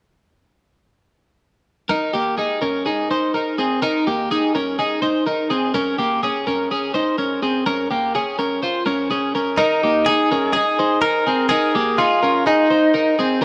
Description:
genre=indie pop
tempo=125 BPM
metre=4/4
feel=straight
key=Ab major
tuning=A4 = 440 Hz
part: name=twelve-string electric guitar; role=arpeggios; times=1.9-13.4 s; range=Bb3 to C5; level=-21 LUFS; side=equal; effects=none
part: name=direct-recorded clean electric guitar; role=melody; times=9.6-13.1 s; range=Eb4 to Bb4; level=-19 LUFS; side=equal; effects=spring reverb
room=moderate plate reverb, RT60 3.7 s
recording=none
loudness=-19 LUFS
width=mono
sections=1.9-9.6 A section; 9.6-13.4 B section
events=none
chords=1.9 Absus2; 5.7 Bbm7; 9.6 Eb7

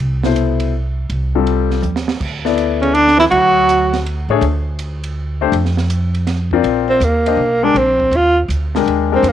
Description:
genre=modal jazz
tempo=162 BPM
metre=3/4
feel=swing 66% on 8ths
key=unclear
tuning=A4 = 440 Hz
part: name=upright bass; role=bass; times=0.0-9.3 s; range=Bb1 to A2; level=-19 LUFS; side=right 1 dB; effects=none
part: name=compact cocktail drum kit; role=drums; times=0.0-9.3 s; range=crash cymbal, hi-hat, kick drum, ride cymbal, snare drum, toms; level=-26 LUFS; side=right 6 dB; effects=none
part: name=warm grand piano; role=accompaniment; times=0.2-9.2 s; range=B2 to Eb5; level=-17 LUFS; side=left 12 dB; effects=none
part: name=breathy tenor saxophone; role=melody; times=2.8-4.0, 6.9-9.3 s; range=Bb3 to F#4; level=-12 LUFS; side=right 1 dB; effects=none
part: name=mellow trombone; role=second line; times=2.8-4.0 s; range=C#3 to F#3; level=-21 LUFS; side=right 9 dB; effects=none
room=light reverb, small room ambience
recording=1960s-style stereo with parts hard left and right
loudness=-13 LUFS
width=side -10 dB against mid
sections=0.0-6.6 A section; 6.6-9.3 B section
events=drum fill 1.8-2.2; tenor saxophone solo 6.6-9.3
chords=0.0 Cmaj7; 2.2 Dadd9; 5.5 F5; 6.6 Bb9sus4

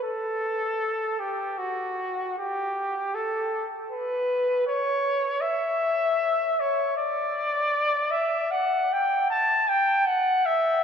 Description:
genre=classical, free, expressive piece for unaccompanied trumpet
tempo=78 BPM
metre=3/4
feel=rubato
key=B minor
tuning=A4 = 440 Hz
part: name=clear trumpet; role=solo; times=0.0-10.8 s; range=F#4 to A5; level=-23 LUFS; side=left 1 dB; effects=none
room=wet cathedral reverb, RT60 5.0 s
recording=none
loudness=-23 LUFS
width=side -7 dB against mid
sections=0.0-10.8 A section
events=none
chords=none

